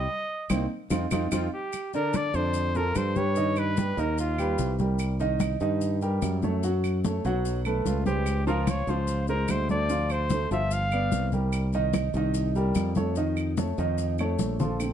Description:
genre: Afro-Cuban jazz.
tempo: 147 BPM.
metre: 4/4.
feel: straight.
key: unclear.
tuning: A4 = 440 Hz.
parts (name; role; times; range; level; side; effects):
breathy trumpet; melody; 0.0-4.8, 7.9-11.3 s; F4 to F5; -30 LUFS; equal; none.
warm grand piano; accompaniment; 0.0-14.9 s; D3 to Gb5; -29 LUFS; right 1 dB; none.
modern bright fingered electric bass; bass; 0.0-14.9 s; G1 to G2; -28 LUFS; equal; none.
claves; percussion; 0.5-14.9 s; none; -40 LUFS; right 5 dB; none.
congas; percussion; 0.5-14.9 s; none; -31 LUFS; left 1 dB; none.
maracas; percussion; 0.5-14.9 s; none; -44 LUFS; left 8 dB; none.
room: light reverb.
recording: dark, warm production.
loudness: -24 LUFS.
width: side -9 dB against mid.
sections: 0.0-1.7 A section; 1.7-14.8 B section.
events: band accent 0.1-1.7; drum fill 14.4-14.8.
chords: 0.1 Cm7; 0.9 F5; 1.7 F69; 3.4 G7alt; 5.0 Cm7; 6.6 Gbm; 7.4 Bsus2; 8.3 Dbmaj7; 9.9 Dm7; 10.7 G7; 11.5 Cm7; 13.2 Faug7.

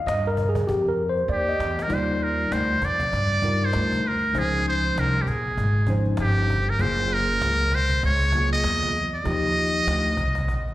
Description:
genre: hip hop, jazz-hop.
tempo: 98 BPM.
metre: 4/4.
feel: swing 61% on 16ths.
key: Eb major.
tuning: A4 = 440 Hz.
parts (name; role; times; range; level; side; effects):
tine electric piano; accompaniment; 0.0-10.1 s; F3 to Eb5; -26 LUFS; equal; medium stereo tremolo, plate reverb, slapback echo.
upright bass; bass; 0.1-10.7 s; Gb1 to G2; -25 LUFS; equal; none.
cajon; drums; 0.1-10.7 s; none; -33 LUFS; equal; slapback echo.
trumpet with metal mute; melody; 1.3-10.7 s; G4 to Eb5; -24 LUFS; equal; plate reverb, slapback echo.
room: light reverb.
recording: live gig heard through the venue's PA, recital hall reverb.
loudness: -20 LUFS.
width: side -15 dB against mid.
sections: 0.0-1.9 A section; 1.9-10.7 B section.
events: tine electric piano solo 0.0-1.9; drum fill 0.7-1.9.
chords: 0.0 Ebadd9; 1.9 Ebmaj9; 4.4 Dbmaj9; 6.8 Gbmaj9; 9.3 Ebmaj9.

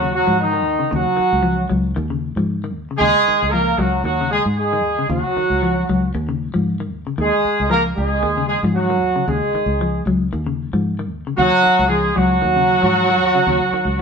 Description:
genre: afrobeat.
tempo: 115 BPM.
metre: 4/4.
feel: swing 54% on 16ths.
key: Eb minor.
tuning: A4 = 436 Hz.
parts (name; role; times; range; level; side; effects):
warm horn section; melody; 0.0-14.0 s; Eb3 to Bb4; -16 LUFS; right 2 dB; none.
semi-hollow electric guitar; arpeggios; 0.0-14.0 s; Db3 to Gb3; -24 LUFS; left 4 dB; none.
fingered electric bass; bass; 0.0-14.0 s; Db2 to Ab2; -22 LUFS; equal; none.
room: wet stone room reverb, RT60 1.0 s.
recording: band playing live in one room.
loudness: -16 LUFS.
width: side -6 dB against mid.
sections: 0.0-14.0 A section.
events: none.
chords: 0.0 Ebm9.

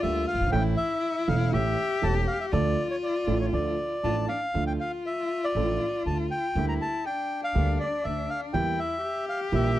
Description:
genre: tango.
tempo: 120 BPM.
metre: 4/4.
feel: rubato.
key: D harmonic minor.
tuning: A4 = 440 Hz.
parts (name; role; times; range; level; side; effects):
bandoneon; melody; 0.0-9.8 s; C#5 to Bb5; -30 LUFS; equal; slapback echo.
warm cello; second line; 0.0-9.8 s; D4 to G4; -31 LUFS; left 4 dB; none.
warm concert grand piano; accompaniment; 0.0-9.7 s; E1 to A4; -30 LUFS; right 4 dB; none.
upright bass; bass; 0.0-9.7 s; E1 to E2; -28 LUFS; right 1 dB; none.
room: little or no reverb.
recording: dry, close 1970s-style studio recording.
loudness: -25 LUFS.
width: side -14 dB against mid.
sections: 0.0-4.5 A section; 4.5-9.8 A section.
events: none.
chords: 0.0 Gm; 0.5 A; 2.5 Dm; 6.6 Gm/D; 8.5 Edim.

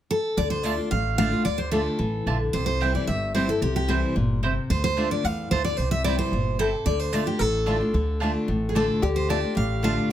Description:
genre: bluegrass.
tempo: 222 BPM.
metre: 4/4.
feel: straight.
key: D minor.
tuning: A4 = 438 Hz.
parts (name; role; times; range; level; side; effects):
picked steel-string acoustic guitar; melody; 0.1-10.1 s; G4 to F5; -26 LUFS; equal; none.
picked steel-string acoustic guitar; accompaniment; 0.4-10.1 s; G2 to F4; -27 LUFS; left 1 dB; none.
upright bass; bass; 0.4-10.0 s; G1 to E2; -27 LUFS; equal; none.
mandolin; stabs; 0.6-9.9 s; A3 to A5; -31 LUFS; right 6 dB; none.
lap resonator guitar; second line; 9.0-10.1 s; G4; -30 LUFS; left 4 dB; none.
room: little or no reverb.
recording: close, detailed microphones.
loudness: -22 LUFS.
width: side -11 dB against mid.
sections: 0.4-10.1 A section.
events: none.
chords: 0.4 Dm; 2.5 C; 4.7 Dm; 5.8 C; 6.9 Dm.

